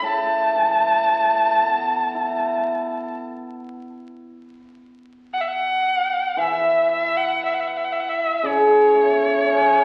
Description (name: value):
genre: chinese traditional, Chinese chamber ensemble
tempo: 58 BPM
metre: 4/4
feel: rubato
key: A gong mode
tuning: A4 = 445 Hz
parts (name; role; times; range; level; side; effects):
- clear erhu; melody; 0.0-9.8 s; C#5 to A5; -23 LUFS; equal; none
- hammered dulcimer; accompaniment; 0.0-9.8 s; A2 to E4; -23 LUFS; equal; none
room: wet recital hall reverb, RT60 1.7 s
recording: very old 78 rpm record, vinyl crackle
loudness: -20 LUFS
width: mono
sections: 0.0-4.3 A section; 4.3-9.8 B section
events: none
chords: none